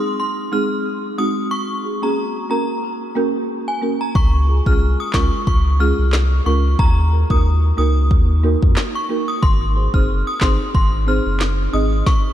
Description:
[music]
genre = dancehall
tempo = 91 BPM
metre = 4/4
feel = swing 56% on 16ths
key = unclear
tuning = A4 = 440 Hz
[part]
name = synth chime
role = melody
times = 0.0-12.2 s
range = Ab5 to F6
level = -24 LUFS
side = left 1 dB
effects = ensemble chorus, tremolo, analog delay
[part]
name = folk marimba with medium mallets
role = accompaniment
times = 0.5-11.9 s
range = Ab3 to Eb5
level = -22 LUFS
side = right 1 dB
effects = none
[part]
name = warm sub bass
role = bass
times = 4.2-12.0 s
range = Gb1 to F2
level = -17 LUFS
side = equal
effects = none
[part]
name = afro-pop drum kit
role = drums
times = 4.2-12.2 s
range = handclaps, kick drum, snare drum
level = -18 LUFS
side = equal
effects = none
[sound]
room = light reverb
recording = none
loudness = -15 LUFS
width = side -12 dB against mid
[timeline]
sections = 0.0-12.3 A section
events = none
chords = 0.0 Ab; 1.5 Gb; 4.2 Db; 6.8 Ebm; 9.4 Ab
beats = 0.20 0.86 | 1.51 2.17 2.83 3.49 | 4.15 4.81 5.47 6.13 | 6.79 7.45 8.11 8.77 | 9.43 10.09 10.75 11.40 | 12.06

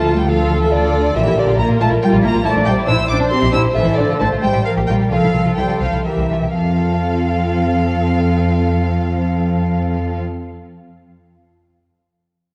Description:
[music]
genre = quick classical-period movement for symphony orchestra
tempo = 118-140 BPM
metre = 3/4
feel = rubato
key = F major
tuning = A4 = 437 Hz
[part]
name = warm chamber violin section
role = melody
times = 0.0-10.2 s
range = D5 to E6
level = -24 LUFS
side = equal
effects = none
[part]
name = rich chamber violin section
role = second line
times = 0.0-10.2 s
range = D4 to C5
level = -25 LUFS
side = equal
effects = none
[part]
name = rich chamber viola section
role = accompaniment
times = 0.0-10.2 s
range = C4 to D5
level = -24 LUFS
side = equal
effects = none
[part]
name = rich chamber double bass section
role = bass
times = 0.0-10.2 s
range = A1 to F2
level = -21 LUFS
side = equal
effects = none
[part]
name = warm chamber cello section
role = bass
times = 0.0-10.2 s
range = D3 to E4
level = -22 LUFS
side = equal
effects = none
[sound]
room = wet concert hall reverb, RT60 2.4 s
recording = dark, warm production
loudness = -16 LUFS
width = mono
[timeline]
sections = 0.0-6.5 A section; 6.5-9.4 B section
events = slowing down 3.1-6.5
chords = 0.0 Dm; 1.1 Gm7/Bb; 2.5 C7/Bb; 3.8 F/A; 4.7 Gm7; 5.1 F/C; 6.0 C7; 6.5 F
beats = 0.28 0.71 | 1.15 1.58 2.02 | 2.46 2.89 3.32 | 3.76 4.21 4.65 | 5.11 5.57 6.05 | 6.55 7.03 7.51 | 7.99 8.47 8.95

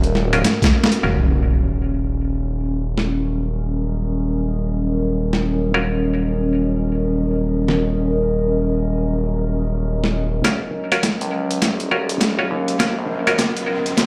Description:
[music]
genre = glitch hop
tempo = 102 BPM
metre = 4/4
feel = swing 60% on 16ths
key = Eb minor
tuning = A4 = 440 Hz
[part]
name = gritty driven synth bass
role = bass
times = 0.0-14.1 s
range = Eb1 to Eb2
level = -24 LUFS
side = equal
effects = tube saturation, high-pass filter
[part]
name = boom bap sampler-style drum kit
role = drums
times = 0.0-14.1 s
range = hi-hat, snare drum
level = -23 LUFS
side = equal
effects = overdrive
[part]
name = warbly tape-like pad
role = texture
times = 0.0-14.1 s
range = Gb3 to Eb5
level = -26 LUFS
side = equal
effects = chorus, built-in reverb, phaser, sidechain pumping
[part]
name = muted clav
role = stabs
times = 0.3-13.4 s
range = Db4 to Db5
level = -25 LUFS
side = equal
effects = vintage 12-bit sampler grit, sidechain pumping, digital delay
[part]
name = electronic kick drum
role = drums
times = 0.6-0.7, 10.4-14.1 s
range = none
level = -24 LUFS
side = equal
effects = overdrive, high-pass filter on kick, high-pass filter on room
[part]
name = impact and riser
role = sound effects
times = 1.0-3.4, 11.9-14.1 s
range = none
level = -27 LUFS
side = equal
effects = none
[sound]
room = moderate lush hall reverb, RT60 2.0 s, digital ambience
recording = played on a big sound system in a bare room, large studio reverb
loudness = -20 LUFS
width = mono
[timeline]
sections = 0.0-1.0 A section; 1.0-10.4 B section; 10.4-14.1 C section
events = drum fill 0.4-1.0, 10.4-14.1; band accent 0.8; impact 1.0-3.4; build-up 10.4-14.1; riser 11.9-14.1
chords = 0.0 Ebm7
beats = 0.45 | 1.03 1.62 2.21 2.80 | 3.39 3.98 4.56 5.15 | 5.74 6.33 6.92 7.50 | 8.09 8.68 9.27 9.86 | 10.45 11.04 11.62 12.21 | 12.80 13.39 13.98

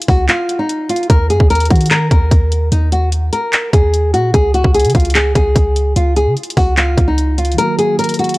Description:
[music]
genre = hip hop, trap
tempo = 148 BPM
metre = 4/4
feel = half-time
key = Eb minor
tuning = A4 = 439 Hz
[part]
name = trap drum kit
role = drums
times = 0.0-8.4 s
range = handclaps, hi-hat, kick drum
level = -14 LUFS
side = equal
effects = none
[part]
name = nylon-string guitar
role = melody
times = 0.1-8.4 s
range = Eb4 to Bb4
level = -16 LUFS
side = equal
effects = analog delay
[part]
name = clean 808-style bass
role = bass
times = 0.1-7.6 s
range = Db2 to Eb3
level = -14 LUFS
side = equal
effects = none
[part]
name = mellow tine electric piano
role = accompaniment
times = 7.5-8.4 s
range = Eb3 to Gb4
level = -19 LUFS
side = equal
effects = medium stereo tremolo
[sound]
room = little or no reverb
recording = dry, gritty hardware recording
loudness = -11 LUFS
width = side -20 dB against mid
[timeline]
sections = 0.0-8.4 A section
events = break 0.3-1.1; kick muted 7.6-8.4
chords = 0.0 Db5; 1.1 Eb5; 4.3 Db5; 7.6 Ebm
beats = 0.29 0.69 | 1.10 1.50 1.91 2.31 | 2.72 3.12 3.53 3.94 | 4.34 4.75 5.15 5.56 | 5.96 6.37 6.77 7.18 | 7.58 7.99

